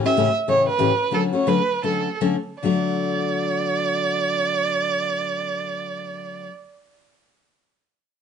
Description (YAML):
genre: jazz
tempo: 139-198 BPM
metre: 4/4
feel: swing 60% on 8ths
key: D major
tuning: A4 = 436 Hz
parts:
  - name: picked steel-string acoustic guitar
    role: accompaniment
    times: 0.0-6.5 s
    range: A2 to G4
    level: -24 LUFS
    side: left 6 dB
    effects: none
  - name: rich violin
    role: melody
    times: 0.1-6.4 s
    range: A4 to E5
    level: -22 LUFS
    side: right 4 dB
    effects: plate reverb
room: moderate studio reverb, RT60 0.5 s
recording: dark, warm production, nothing above 10.6 kHz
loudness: -20 LUFS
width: side -7 dB against mid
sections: 0.0-2.6 A section; 2.6-6.1 B section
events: slowing down 0.0-2.6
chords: 0.0 A7; 1.1 Dmaj7; 2.6 D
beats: 0.16 0.47 0.79 | 1.11 1.46 1.82 2.20 | 2.62 3.05 3.48 3.91 | 4.34 4.78 5.21 5.64